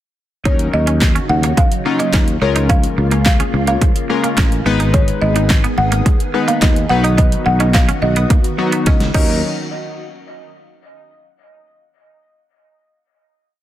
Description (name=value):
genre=dance-pop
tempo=107 BPM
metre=4/4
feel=straight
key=Eb minor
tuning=A4 = 440 Hz
part: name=folk marimba with medium mallets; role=melody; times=0.5-9.4 s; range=Db5 to Gb5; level=-22 LUFS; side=equal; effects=dub echo
part: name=chorused retro synth keys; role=accompaniment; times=0.5-9.4 s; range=Gb3 to Cb5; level=-22 LUFS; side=left 4 dB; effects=sidechain pumping
part: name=soft string machine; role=sustained chords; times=1.0-9.4 s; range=Db3 to Ab4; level=-24 LUFS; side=equal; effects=phaser, ensemble chorus, sidechain pumping
part: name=glassy wavetable pluck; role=arpeggios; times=0.5-9.4 s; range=Eb3 to Eb6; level=-28 LUFS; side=left 2 dB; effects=chorus, sidechain pumping, dub echo
part: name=twangy electric guitar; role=riff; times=0.5-9.3 s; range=Ab3 to Eb4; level=-25 LUFS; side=right 7 dB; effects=lush chorus
part: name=sustaining fretless electric bass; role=bass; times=0.5-9.4 s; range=Ab1 to Eb2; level=-17 LUFS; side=equal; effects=sidechain pumping
part: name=pop drum kit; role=drums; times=0.5-9.3 s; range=crash cymbal, handclaps, hi-hat, kick drum, snare drum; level=-15 LUFS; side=equal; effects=overdrive
room=light reverb, digital ambience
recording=dense, heavily limited modern master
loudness=-12 LUFS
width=side -13 dB against mid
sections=0.5-9.4 chorus; 9.4-11.7 final hit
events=drum fill 8.9-9.4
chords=0.5 Ebm7; 2.4 Db6; 4.7 Abm; 6.9 B; 9.1 Ebm7; 9.4 N.C.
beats=| 0.45 1.01 1.57 2.14 | 2.70 3.26 3.82 4.38 | 4.94 5.50 6.06 6.62 | 7.18 7.74 8.30 8.87